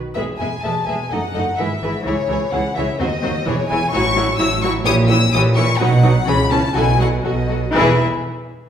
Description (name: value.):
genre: quick classical-period movement for string orchestra.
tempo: 127 BPM.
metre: 2/4.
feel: straight.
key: E major.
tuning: A4 = 439 Hz.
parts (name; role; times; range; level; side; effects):
warm chamber violin section; melody; 0.1-8.0 s; C#5 to E6; -21 LUFS; left 4 dB; none.
rich chamber violin section; second line; 0.1-8.0 s; C#4 to E5; -24 LUFS; left 2 dB; none.
rich chamber viola section; accompaniment; 0.2-8.0 s; E3 to G#4; -22 LUFS; equal; none.
rich chamber double bass section; bass; 0.2-8.0 s; E1 to Eb2; -21 LUFS; right 2 dB; none.
warm chamber cello section; bass; 0.2-8.0 s; C#2 to C#3; -23 LUFS; right 2 dB; none.
room: wet recital hall reverb, RT60 1.4 s.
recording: recorded in a church or concert hall.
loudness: -15 LUFS.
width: side -9 dB against mid.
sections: 0.2-7.7 A section.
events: slowing down 5.3-7.7.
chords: 0.2 E; 1.1 D#dim/F#; 1.6 E/G#; 2.1 C#m; 3.0 Cdim/Eb; 3.5 C#m/E; 3.9 F#m7/A; 4.9 A#dim7; 5.8 B; 6.3 C#m; 6.7 B7sus4; 7.2 B; 7.7 E.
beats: | 0.16 0.64 | 1.12 1.59 | 2.06 2.52 | 2.99 3.46 | 3.92 4.39 | 4.85 5.32 | 5.79 6.26 | 6.74 7.24 | 7.74.